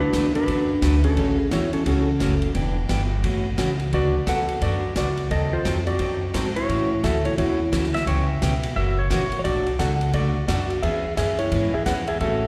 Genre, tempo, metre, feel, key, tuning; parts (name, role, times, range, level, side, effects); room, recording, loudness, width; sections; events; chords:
country, western swing; 174 BPM; 4/4; swing 63% on 8ths; A major; A4 = 441 Hz
clean lap steel guitar; melody; 0.0-12.5 s; C#4 to F#5; -26 LUFS; equal; slapback echo
upright bass; bass; 0.0-12.5 s; E1 to A2; -26 LUFS; equal
picked steel-string acoustic guitar; accompaniment; 0.1-12.4 s; B2 to B4; -30 LUFS; equal; slapback echo
swinging big-band drum kit; drums; 0.1-12.3 s; hi-hat, kick drum, ride cymbal, snare drum; -34 LUFS; equal
pedal steel guitar; second line; 7.9-9.4 s; C#5 to E5; -31 LUFS; equal; slapback echo
light reverb; live gig heard through the venue's PA, recital hall reverb; -23 LUFS; mono
0.0-12.5 A section
0.0 D6; 1.2 A6; 2.5 Em7; 3.2 A6; 3.9 D6; 5.3 D#dim7; 6.7 A6; 8.1 C#m7b5; 8.8 F#7; 9.4 Bm7; 10.8 E6